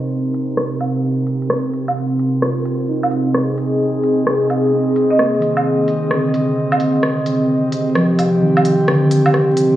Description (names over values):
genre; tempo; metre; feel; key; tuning
future garage; 130 BPM; 4/4; swing 65% on 16ths; unclear; A4 = 440 Hz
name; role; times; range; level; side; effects
muted felt-like synth keys; accompaniment; 0.0-9.8 s; D3 to Bb4; -20 LUFS; right 1 dB; chorus, analog delay
airy breathy pad; sustained chords; 0.0-9.8 s; C3 to Eb5; -16 LUFS; equal; chorus
organic electronic drum kit; drums; 0.3-9.7 s; hi-hat, rim click, woodblock; -21 LUFS; equal; studio reverb
marimba with medium hard mallets; melody; 5.1-5.4 s; Eb5; -21 LUFS; right 2 dB; analog delay
room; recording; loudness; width
wet lush hall reverb, RT60 1.9 s; vinyl crackle, low-pass filter, studio reverb; -14 LUFS; side -13 dB against mid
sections
0.0-9.8 A section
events
filter sweep on analog synth pad 0.0-9.8; filter sweep 0.0-9.8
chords
0.0 Cm7; 2.9 Ab/C